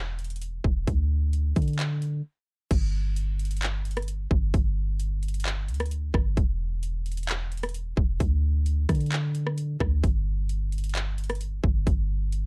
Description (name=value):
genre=hip hop, atmospheric cloud-rap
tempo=131 BPM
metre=4/4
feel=half-time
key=unclear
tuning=A4 = 442 Hz
part: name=soft 808-style bass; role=bass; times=0.0-12.5 s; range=E1 to D3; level=-29 LUFS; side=equal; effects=none
part: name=trap drum kit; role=drums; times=0.2-12.4 s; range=crash cymbal, handclaps, hi-hat, kick drum, rim click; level=-30 LUFS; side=equal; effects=overdrive
room=little or no reverb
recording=none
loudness=-27 LUFS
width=mono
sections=0.0-2.7 A section; 2.7-12.5 B section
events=break 2.2-2.7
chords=none